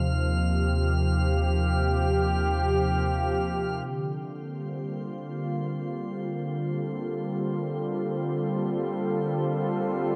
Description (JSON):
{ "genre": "ambient", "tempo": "free time", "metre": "none", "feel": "none", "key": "unclear", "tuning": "A4 = 441 Hz", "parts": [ { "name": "warm analog pad", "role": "sustained chords", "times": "0.0-10.2 s", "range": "C3 to A4", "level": "-30 LUFS", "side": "equal", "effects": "chorus, shimmer reverb" }, { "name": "warm sub bass", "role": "bass", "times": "0.0-3.8 s", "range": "Eb2", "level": "-28 LUFS", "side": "equal", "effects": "none" }, { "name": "drifting glass-harmonics texture", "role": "texture", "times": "0.0-10.2 s", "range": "C5 to F6", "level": "-40 LUFS", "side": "equal", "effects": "chorus, built-in reverb, shimmer reverb" }, { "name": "organ-like drone", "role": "drone", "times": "4.5-10.2 s", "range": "Bb3 to F4", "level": "-40 LUFS", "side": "equal", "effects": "ensemble chorus, built-in reverb" } ], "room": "wet spring reverb, RT60 2.3 s", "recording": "cassette tape", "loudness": "-28 LUFS", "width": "mono", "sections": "0.0-3.9 A section; 3.9-10.2 B section", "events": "filter sweep on analog synth pad 0.0-3.9; fade-in on synth texture 3.9-10.2", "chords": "0.0 Ebadd9; 3.9 Dm7" }